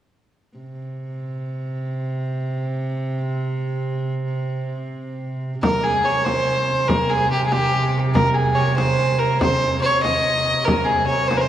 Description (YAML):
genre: medieval dance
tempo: 95 BPM (dotted quarters)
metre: 6/8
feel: straight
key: C phrygian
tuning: A4 = 442 Hz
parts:
  - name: warm viola da gamba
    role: drone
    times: 0.6-11.5 s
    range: C3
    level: -24 LUFS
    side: right 2 dB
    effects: none
  - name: clear fiddle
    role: melody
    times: 5.6-11.5 s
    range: G4 to Eb5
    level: -18 LUFS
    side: equal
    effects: none
  - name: frame drum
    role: percussion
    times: 5.6-11.5 s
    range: none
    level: -24 LUFS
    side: left 1 dB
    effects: none
room: wet cathedral reverb, RT60 4.9 s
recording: worn, warbling old tape, cassette tape, warbly pitch drift, small room ambience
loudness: -18 LUFS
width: side -11 dB against mid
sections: 0.6-5.6 A section; 5.6-11.5 B section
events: none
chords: none